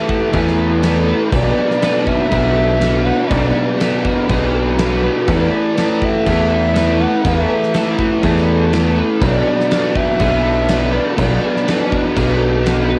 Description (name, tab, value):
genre	rock, shoegaze and dream pop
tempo	122 BPM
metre	4/4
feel	straight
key	E mixolydian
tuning	A4 = 440 Hz
part	bright reedy long shakuhachi	melody	0.0-12.1 s	D5 to F#5	-23 LUFS	equal	cassette tape, tape echo
part	twelve-string electric guitar	arpeggios	0.0-13.0 s	F#4 to B4	-30 LUFS	equal	none
part	raw garage guitar	riff	0.0-13.0 s	B2 to B4	-19 LUFS	equal	overdrive, analog chorus, cassette tape
part	gated 80s drum kit	drums	0.1-12.8 s	crash cymbal, kick drum, snare drum	-25 LUFS	equal	none
part	fuzz picked electric bass	bass	0.3-12.9 s	B1 to E2	-20 LUFS	equal	overdrive
room	small room ambience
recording	home recording on cassette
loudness	-15 LUFS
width	mono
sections	0.0-13.0 A section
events	none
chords	0.0 Esus4; 1.3 Bm; 5.3 Esus4; 9.2 Bm